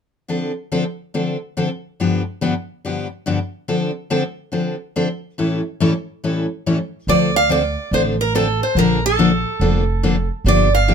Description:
acoustic string swing (jazz manouche); 142 BPM; 4/4; swing 64% on 8ths; D dorian, D minor from 7.1 s; A4 = 440 Hz
picked steel-string acoustic guitar; accompaniment; 0.3-10.9 s; G2 to A4; -18 LUFS; left 2 dB
picked steel-string acoustic guitar; melody; 7.1-10.9 s; A4 to F5; -18 LUFS; right 3 dB; plate reverb
upright bass; bass; 7.1-10.9 s; F1 to D2; -20 LUFS; right 1 dB
light reverb; close, detailed microphones; -17 LUFS; side -7 dB against mid
0.3-7.1 A section; 7.1-10.9 B section
0.3 Dm7; 2.0 G7; 3.7 Dm7; 5.4 A7; 7.1 Dm7; 8.8 Bbmaj7
| 0.29 0.72 1.14 1.56 | 1.99 2.41 2.83 3.26 | 3.68 4.11 4.53 4.95 | 5.38 5.80 6.22 6.65 | 7.07 7.49 7.92 8.34 | 8.76 9.19 9.61 10.03 | 10.46 10.88

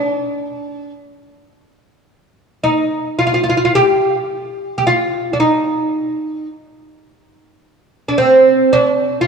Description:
turkish; 108 BPM (eighths); 10/8; straight; A4 = 440 Hz
oud; melody; 0.0-9.3 s; C4 to G4; -13 LUFS; right 1 dB
moderate concert hall reverb, RT60 2.2 s; worn, warbling old tape, cassette tape, warbly pitch drift; -13 LUFS; side -6 dB against mid
0.0-9.3 A section
0.40 0.96 1.51 | 2.07 2.62 3.18 3.74 4.29 4.85 5.40 5.95 6.51 7.06 | 7.62 8.17 8.72

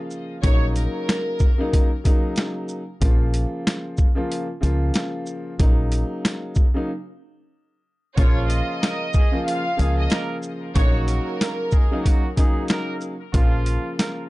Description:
hip hop, boom-bap hip-hop; 93 BPM; 4/4; swing 57% on 16ths; A4 = 440 Hz
warm upright piano; accompaniment; 0.0-14.3 s; Db3 to F4; -27 LUFS; left 1 dB; cassette tape, high-pass filter, low-pass filter, plate reverb
boom bap sampler-style drum kit; drums; 0.1-14.2 s; hi-hat, kick drum, shaker, snare drum; -19 LUFS; equal
warm studio violin section; melody; 0.4-1.9, 8.2-12.2 s; Bb4 to F5; -29 LUFS; equal; high-pass filter, low-pass filter, plate reverb, ping-pong delay
deep dub fingered electric bass; bass; 0.4-13.8 s; Bb1 to Db2; -21 LUFS; equal
dark horn section; stabs; 8.2-14.2 s; F3 to Bb4; -32 LUFS; right 4 dB; high-pass filter, low-pass filter, plate reverb, ping-pong delay
little or no reverb; dark, warm production, nothing above 10.7 kHz; -19 LUFS; side -20 dB against mid
0.0-14.3 A section
break 6.9-8.2
0.4 Ebm7/Bb; 3.0 Bbm; 5.6 Ebm7/Bb; 8.2 Bbm; 10.8 Ebm7/Bb; 13.3 Bbm
| 0.44 1.08 1.73 2.37 | 3.02 3.66 4.31 4.95 | 5.60 6.24 6.89 7.53 | 8.18 8.82 9.47 10.11 | 10.76 11.40 12.05 12.69 | 13.34 13.98

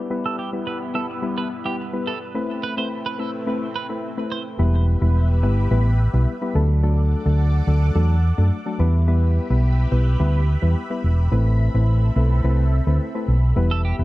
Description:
afrobeats; 107 BPM; 4/4; straight; E minor; A4 = 440 Hz
soft electric-piano-like synth keys; accompaniment; 0.0-14.0 s; F#3 to B4; -26 LUFS; left 3 dB; chorus, low-pass filter
lush unison pad; sustained chords; 0.0-14.0 s; G3 to D6; -33 LUFS; right 1 dB; chorus, phaser, low-pass filter
twelve-string electric guitar; riff; 0.3-4.4, 13.7-14.0 s; G4 to C5; -30 LUFS; right 6 dB; low-pass filter, dub echo
hollow-body short-scale fingered electric bass; bass; 4.6-14.0 s; E1 to F#2; -17 LUFS; equal
digital ambience; echo-heavy mix; -18 LUFS; side -18 dB against mid
0.0-4.6 A section; 4.6-14.0 B section
0.0 Em; 2.3 Amadd9; 4.6 Em; 6.6 D; 8.8 Em; 11.3 Amadd9
| 0.10 0.66 1.23 1.79 | 2.35 2.91 3.47 4.03 | 4.59 5.15 5.71 6.27 | 6.83 7.39 7.95 8.52 | 9.07 9.64 10.20 10.76 | 11.32 11.88 12.44 13.00 | 13.56

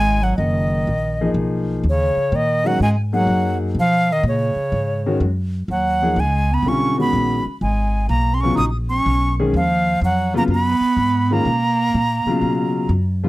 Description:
modal jazz; 125 BPM; 4/4; swing 67% on 8ths; G# dorian; A4 = 438 Hz
breathy bright concert flute; melody; 0.0-12.9 s; C#5 to D#6; -21 LUFS; equal; slapback echo
bright bass clarinet; second line; 0.0-12.9 s; C#3 to D#4; -22 LUFS; right 2 dB
upright bass; bass; 0.0-13.3 s; F#1 to B2; -21 LUFS; equal
warm concert grand piano; accompaniment; 1.2-13.3 s; B2 to G#4; -21 LUFS; left 2 dB
light reverb; dry, close 1970s-style studio recording; -16 LUFS; side -18 dB against mid
0.0-13.3 A section
0.0 G#m11
0.39 0.87 1.35 | 1.84 2.32 2.80 3.28 | 3.76 4.25 4.73 5.21 | 5.69 6.17 6.65 7.13 | 7.61 8.10 8.58 9.06 | 9.54 10.02 10.50 10.98 | 11.46 11.94 12.43 12.91

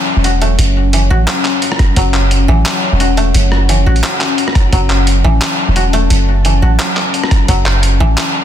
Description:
half-time drum and bass; 174 BPM; 4/4; swing 56% on 16ths, half-time; F# minor; A4 = 441 Hz
dark analog pad; sustained chords; 0.0-8.4 s; F#3 to A5; -19 LUFS; left 4 dB; chorus, phaser, sidechain pumping
koto; arpeggios; 0.0-8.4 s; E3 to F#4; -20 LUFS; equal; ping-pong delay
long sustained 808-style bass; bass; 0.2-8.2 s; E1 to A1; -12 LUFS; equal
boom bap sampler-style drum kit; drums; 0.2-8.3 s; handclaps, hi-hat, rim click; -16 LUFS; equal
electronic kick drum; drums; 1.8-2.0, 4.6-4.8, 7.3-7.6 s; -12 LUFS; equal
digital ambience; dense, heavily limited modern master; -10 LUFS; side -10 dB against mid
0.0-8.4 A section
0.0 F#5
0.24 | 0.59 0.93 1.28 1.62 | 1.97 2.31 2.66 3.00 | 3.35 3.69 4.04 4.38 | 4.73 5.07 5.42 5.76 | 6.11 6.45 6.79 7.14 | 7.49 7.83 8.18

